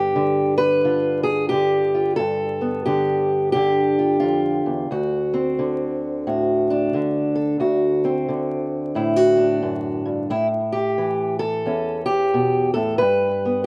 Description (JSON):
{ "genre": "acoustic country blues, solo or duo", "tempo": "89 BPM", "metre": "4/4", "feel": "swing 63% on 8ths", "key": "D mixolydian", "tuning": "A4 = 440 Hz", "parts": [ { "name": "fingerpicked steel-string acoustic guitar", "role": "solo", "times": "0.0-13.7 s", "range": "D2 to B4", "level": "-21 LUFS", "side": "equal", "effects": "slapback echo" } ], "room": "little or no reverb", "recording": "recorded outdoors, with no room sound, vinyl crackle", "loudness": "-21 LUFS", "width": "mono", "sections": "0.0-13.7 A section", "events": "none", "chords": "0.0 G7; 4.9 D7; 10.3 A7; 13.0 G" }